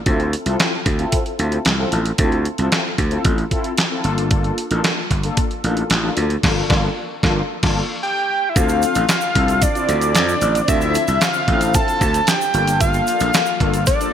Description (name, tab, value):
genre	early-eighties boogie funk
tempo	113 BPM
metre	4/4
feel	straight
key	D minor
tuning	A4 = 444 Hz
part	mellow synth brass	accompaniment	0.1-14.1 s	Bb3 to A4	-24 LUFS	left 2 dB	chorus, phaser
part	gritty slap bass	bass	0.1-13.9 s	G1 to F2	-20 LUFS	equal	overdrive
part	detuned 8-bit digital drum machine	drums	0.1-14.1 s	crash cymbal, handclaps, hi-hat, kick drum, snare drum	-20 LUFS	equal	gated reverb
part	fat analog lead	melody	8.0-14.1 s	D5 to A5	-19 LUFS	equal	phaser
part	string machine, violins	sustained chords	8.6-14.1 s	D3 to A4	-29 LUFS	left 1 dB	none
part	tube shaker	percussion	8.6-14.1 s	none	-31 LUFS	right 8 dB	none
room	moderate lush hall reverb, RT60 1.8 s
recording	bright 1980s-style digital production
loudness	-16 LUFS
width	side -9 dB against mid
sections	0.0-8.6 A section; 8.6-14.1 B section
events	band accent 6.4-8.6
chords	0.1 Dm9; 4.0 Gm9; 8.6 Dm9; 12.5 Gm9